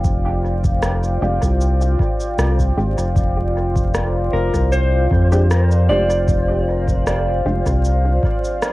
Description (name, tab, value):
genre	ambient dub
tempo	77 BPM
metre	4/4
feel	swing 53% on 16ths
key	unclear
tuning	A4 = 443 Hz
part	deep dark ambient pad	sustained chords	0.0-8.7 s	F4 to G5	-23 LUFS	equal	chorus, built-in reverb, cassette tape
part	round analog bass	bass	0.0-8.2 s	F1 to F2	-17 LUFS	equal	none
part	electronic kick drum	drums	0.0-8.4 s	none	-21 LUFS	equal	cassette tape
part	electronic shaker and rim click	drums	0.0-8.7 s	none	-26 LUFS	equal	cassette tape, dub echo
part	filtered dub chord stab	stabs	1.2-7.6 s	Ab3 to G4	-27 LUFS	equal	chorus, cassette tape, dub echo
part	clean lap steel guitar	melody	4.3-7.4 s	Bb4 to D5	-23 LUFS	equal	cassette tape, dub echo, plate reverb
room	light reverb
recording	home recording on cassette, vinyl crackle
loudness	-15 LUFS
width	side -18 dB against mid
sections	0.0-8.7 A section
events	none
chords	0.0 Fm69